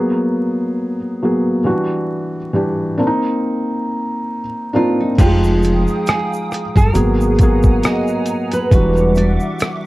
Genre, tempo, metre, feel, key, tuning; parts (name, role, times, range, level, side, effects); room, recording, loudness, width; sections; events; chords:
lo-fi hip hop; 68 BPM; 4/4; swing 55% on 16ths; A4 = 440 Hz
felt-muted upright piano; accompaniment; 0.0-9.9 s; E3 to G5; -17 LUFS; equal; low-pass filter
nylon-string guitar; melody; 4.8-9.9 s; Eb4 to Eb5; -21 LUFS; right 2 dB; low-pass filter
hollow soft pad; sustained chords; 5.5-9.9 s; G3 to Eb6; -25 LUFS; right 2 dB; ensemble chorus, low-pass filter
upright bass; bass; 5.2-9.4 s; E1 to Ab1; -17 LUFS; equal
lo-fi sampler-style drum kit; drums; 5.2-9.8 s; crash cymbal, hi-hat, kick drum, rim click; -15 LUFS; equal
tube shaker; percussion; 5.2-9.8 s; -42 LUFS; right 5 dB
moderate small room reverb, RT60 0.5 s; dark, warm production, vinyl crackle; -14 LUFS; side -18 dB against mid
0.0-5.2 A section; 5.2-9.9 B section
0.0 Abm9; 1.7 Em9; 3.0 Cm9; 5.2 Fm9; 6.9 Abm9; 8.7 Em9